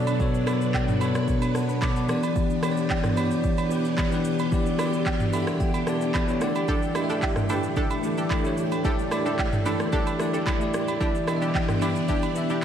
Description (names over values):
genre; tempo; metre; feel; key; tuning
amapiano; 111 BPM; 4/4; straight; unclear; A4 = 440 Hz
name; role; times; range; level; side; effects
bell-like tine electric piano; accompaniment; 0.0-12.6 s; B2 to D6; -26 LUFS; left 1 dB; none
string machine, full ensemble; sustained chords; 0.0-12.6 s; E3 to B4; -28 LUFS; equal; ensemble chorus, sidechain pumping
afro-pop drum kit; drums; 0.1-12.6 s; handclaps, kick drum, rim click, shaker, toms; -28 LUFS; equal; overdrive, vintage 12-bit sampler grit
agogo bells and woodblock; percussion; 0.1-12.3 s; none; -34 LUFS; right 7 dB; none
punchy chord stab; stabs; 6.7-12.6 s; D4 to A4; -30 LUFS; right 2 dB; chorus, diffuse ambient delay
room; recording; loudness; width
wet plate reverb, RT60 1.3 s; dreamy mix soaked in reverb; -22 LUFS; side -9 dB against mid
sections
0.0-12.6 A section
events
tine electric piano fill 5.1-6.7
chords
0.0 Bm7; 2.1 Em7; 6.4 A7sus4; 11.0 Em7